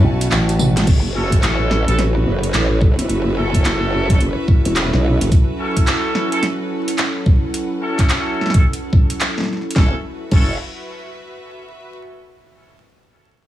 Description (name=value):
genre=glitch hop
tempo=108 BPM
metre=4/4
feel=swing 62% on 16ths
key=F# minor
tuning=A4 = 442 Hz
part: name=warbly tape-like pad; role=sustained chords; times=0.0-10.0 s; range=F#3 to A4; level=-24 LUFS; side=right 1 dB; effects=chorus, built-in reverb, sidechain pumping
part: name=growl bass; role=bass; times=0.0-5.3, 9.8-10.6 s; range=E1 to B1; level=-17 LUFS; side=equal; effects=chorus
part: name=slap bass with an envelope filter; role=bass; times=0.0-0.9 s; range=A1 to B1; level=-16 LUFS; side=equal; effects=none
part: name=clear studio string section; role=texture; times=0.0-11.9 s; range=F#4 to A5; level=-31 LUFS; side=equal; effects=sidechain pumping
part: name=dubstep drum kit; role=drums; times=0.2-10.5 s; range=crash cymbal, handclaps, hi-hat, snare drum, tambourine, toms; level=-22 LUFS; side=equal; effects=none
part: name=electronic kick drum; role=drums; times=0.9-10.5 s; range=none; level=-13 LUFS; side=equal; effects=none
part: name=bright horn section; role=stabs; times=1.1-10.5 s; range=C#4 to A4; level=-25 LUFS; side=equal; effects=sidechain pumping, low-pass filter, tape echo
room=little or no reverb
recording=vinyl crackle, small room ambience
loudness=-14 LUFS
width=side -13 dB against mid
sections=0.9-9.8 A section; 9.8-12.0 B section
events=break 0.0-0.9; drum fill 0.5-0.9; fade-out on string section 0.9-9.8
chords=0.0 F#m7